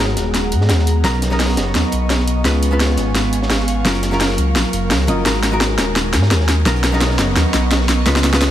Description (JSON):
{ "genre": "liquid drum and bass", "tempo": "171 BPM", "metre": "4/4", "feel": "swing 54% on 16ths", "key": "unclear", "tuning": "A4 = 440 Hz", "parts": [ { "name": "hollow-body jazz guitar", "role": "accompaniment", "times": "0.0-8.5 s", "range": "F#3 to D#5", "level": "-21 LUFS", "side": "equal", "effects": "digital delay" }, { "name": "airy breathy pad", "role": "sustained chords", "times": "0.0-8.5 s", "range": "B3 to C#6", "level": "-24 LUFS", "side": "equal", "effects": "chorus" }, { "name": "dark detuned saw bass", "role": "bass", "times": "0.0-8.5 s", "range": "D#1 to G#2", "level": "-18 LUFS", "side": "equal", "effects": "none" }, { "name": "crunchy breakbeat drum kit", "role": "drums", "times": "0.1-8.5 s", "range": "hi-hat, snare drum", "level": "-26 LUFS", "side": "equal", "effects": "high-pass filter on hats, high-pass filter on snare, high-pass filter on room" }, { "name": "drum and bass drum kit", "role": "drums", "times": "0.2-8.5 s", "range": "hi-hat, snare drum", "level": "-19 LUFS", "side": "equal", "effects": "overdrive" } ], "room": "light reverb", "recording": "none", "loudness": "-14 LUFS", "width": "side -12 dB against mid", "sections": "0.0-8.5 A section", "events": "build-up 0.0-8.5; drum fill 0.0-8.5", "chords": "0.0 G#m9; 1.0 Bmaj9; 2.5 C#7; 3.9 F#maj7; 5.3 G#m9; 6.7 Bmaj9", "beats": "0.35 0.70 | 1.05 1.40 1.75 2.10 | 2.45 2.80 3.15 3.50 | 3.85 4.21 4.56 4.91 | 5.26 5.61 5.96 6.31 | 6.66 7.01 7.36 7.71 | 8.06 8.42" }